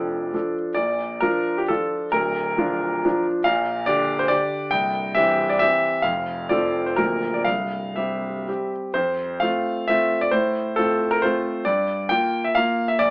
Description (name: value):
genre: classical, romantic triple-time dance for piano with dotted rhythms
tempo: 114-152 BPM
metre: 3/4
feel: rubato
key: F major from 3.5 s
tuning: A4 = 439 Hz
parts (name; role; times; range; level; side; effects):
- clear concert grand piano; solo; 0.0-13.1 s; C1 to G5; -19 LUFS; equal; none
room: light reverb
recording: AM radio sound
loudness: -19 LUFS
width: side -28 dB against mid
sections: 0.0-8.9 A section; 8.9-13.1 B section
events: none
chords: 0.0 Dm/F; 0.8 Bb; 2.1 Bb/D; 3.5 Gm7/Bb; 4.7 C; 6.0 F; 7.0 Bb/D; 7.5 C; 8.9 F; 10.3 F/A; 11.7 Gm7